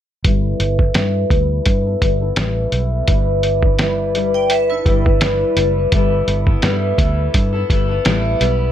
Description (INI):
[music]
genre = indie pop, bedroom pop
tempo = 84 BPM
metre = 4/4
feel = swing 55% on 16ths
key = G major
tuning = A4 = 440 Hz
[part]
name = picked steel-string acoustic guitar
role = accompaniment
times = 0.2-8.7 s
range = G3 to B4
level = -18 LUFS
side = left 2 dB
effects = lush chorus, warbly pitch drift, low-pass filter, plate reverb
[part]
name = vintage muted fingered electric bass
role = bass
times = 0.2-8.7 s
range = F#1 to G2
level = -19 LUFS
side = equal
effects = none
[part]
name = lo-fi sampler-style drum kit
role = drums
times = 0.2-8.6 s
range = hi-hat, kick drum, snare drum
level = -17 LUFS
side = equal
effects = none
[part]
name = vibraphone with hard mallets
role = second line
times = 4.3-5.7 s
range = E4 to G5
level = -22 LUFS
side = right 5 dB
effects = analog chorus, tape echo, plate reverb
[sound]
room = light reverb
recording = none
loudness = -14 LUFS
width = side -10 dB against mid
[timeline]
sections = 0.2-8.7 A section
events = filter sweep on steel-string acoustic guitar 0.2-8.7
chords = 0.2 G69; 3.1 Em7/G; 5.9 G69